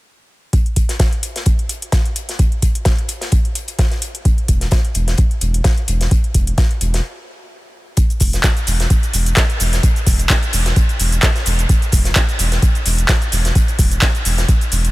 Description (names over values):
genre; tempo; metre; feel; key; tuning
acid house; 129 BPM; 4/4; swing 55% on 16ths; unclear; A4 = 442 Hz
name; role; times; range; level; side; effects
electro analog drum machine; drums; 0.5-14.9 s; handclaps, hi-hat, shaker; -20 LUFS; equal; overdrive
electronic kick drum; drums; 0.5-14.6 s; none; -14 LUFS; equal; none
modern studio drum kit; drums; 0.5-14.9 s; hi-hat, snare drum; -27 LUFS; left 2 dB; high-pass filter on hats, high-pass filter on snare, high-pass filter on room
warm sub bass; bass; 4.5-14.9 s; E1; -17 LUFS; equal; tube saturation, sidechain pumping
room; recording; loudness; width
small room ambience; none; -14 LUFS; side -19 dB against mid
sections
0.5-8.0 A section; 8.0-14.9 B section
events
stop 7.0-8.0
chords
none